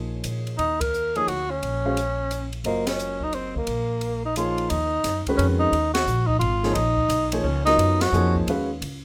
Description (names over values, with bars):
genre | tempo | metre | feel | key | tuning
modal jazz | 175 BPM | 3/4 | swing 64% on 8ths | Eb minor from 4.7 s | A4 = 440 Hz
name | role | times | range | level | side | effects
warm grand piano | accompaniment | 0.0-8.7 s | Eb3 to F5 | -29 LUFS | equal | none
upright bass | bass | 0.0-9.0 s | Gb1 to Bb2 | -29 LUFS | equal | none
open jazz drum kit | drums | 0.2-8.9 s | hi-hat, kick drum, ride cymbal, snare drum | -35 LUFS | equal | none
breathy tenor saxophone | melody | 0.6-8.4 s | Bb3 to Bb4 | -26 LUFS | equal | none
room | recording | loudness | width
light reverb | none | -24 LUFS | mono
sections
0.0-4.7 A section; 4.7-9.0 B section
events
band accent 0.8, 2.8, 5.9, 8.0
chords
0.0 Bbm7; 0.6 Ebm9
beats
0.24 | 0.59 0.93 1.27 | 1.62 1.96 2.30 | 2.65 2.99 3.33 | 3.67 4.02 4.36 | 4.70 5.05 5.39 | 5.73 6.07 6.42 | 6.76 7.10 7.45 | 7.79 8.13 8.47 | 8.82